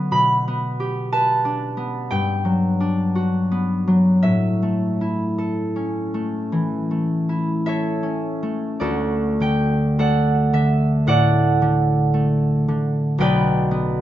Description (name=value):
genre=classical, solo harp piece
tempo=49-61 BPM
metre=4/4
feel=rubato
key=D major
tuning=A4 = 440 Hz
part: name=concert harp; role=solo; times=0.0-14.0 s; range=B1 to B5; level=-18 LUFS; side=equal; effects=none
room=light reverb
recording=nothing above 7.5 kHz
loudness=-18 LUFS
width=side -12 dB against mid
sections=0.0-8.8 A section; 8.8-14.0 B section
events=none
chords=0.1 G/B; 2.1 Gmaj7; 4.2 A; 8.8 D; 13.2 G/B